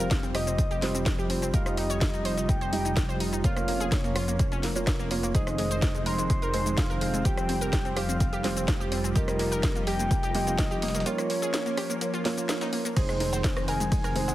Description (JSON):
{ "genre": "progressive house", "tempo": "126 BPM", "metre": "4/4", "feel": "straight", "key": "F minor", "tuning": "A4 = 441 Hz", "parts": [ { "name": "soft octave-layered synth lead", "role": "melody", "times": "0.0-14.3 s", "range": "Bb4 to C6", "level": "-33 LUFS", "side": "left 1 dB", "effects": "chorus, sidechain pumping, digital delay" }, { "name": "lush unison pad", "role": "sustained chords", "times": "0.0-14.3 s", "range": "Eb3 to Eb4", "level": "-35 LUFS", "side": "equal", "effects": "chorus, sidechain pumping" }, { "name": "glassy wavetable pluck", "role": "arpeggios", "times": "0.0-14.3 s", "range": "Ab3 to Db5", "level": "-35 LUFS", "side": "left 1 dB", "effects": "chorus, cassette tape, sidechain pumping, digital delay" }, { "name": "felt-muted upright piano", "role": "stabs", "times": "0.0-14.3 s", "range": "G3 to Eb5", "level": "-33 LUFS", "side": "right 4 dB", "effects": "sidechain pumping, digital delay" }, { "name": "dark detuned saw bass", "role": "bass", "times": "0.0-14.3 s", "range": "F1", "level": "-32 LUFS", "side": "equal", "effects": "sidechain pumping" }, { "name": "house drum kit", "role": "drums", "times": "0.0-14.3 s", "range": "cabasa, crash cymbal, hi-hat, ride cymbal, rim click, snare drum", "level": "-34 LUFS", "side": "equal", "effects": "none" }, { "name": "downlifter", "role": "sound effects", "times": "0.0-1.5 s", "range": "none", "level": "barely audible", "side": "none", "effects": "none" }, { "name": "breakbeat sampler-style drum kit", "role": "drums", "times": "0.1-14.3 s", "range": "hi-hat, snare drum", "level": "-43 LUFS", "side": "equal", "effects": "none" }, { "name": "electronic kick drum", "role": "drums", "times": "0.1-14.0 s", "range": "none", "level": "-27 LUFS", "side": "equal", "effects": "none" }, { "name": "electronic rim click, congas and cowbell", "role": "percussion", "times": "13.0-14.3 s", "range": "none", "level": "-38 LUFS", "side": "right 2 dB", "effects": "overdrive, sidechain pumping on snare, sidechain pumping on perc" } ], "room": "light reverb", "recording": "heavily compressed radio sound", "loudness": "-24 LUFS", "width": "side -14 dB against mid", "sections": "0.0-14.3 A section", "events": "break 11.1-13.0", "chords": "0.0 Fsus2; 1.5 Ebadd9/F; 3.4 Bbm/F; 5.3 Ab/F; 7.3 Fsus2; 9.2 Ebadd9/F; 11.1 Bbm/F; 13.0 Ab/F" }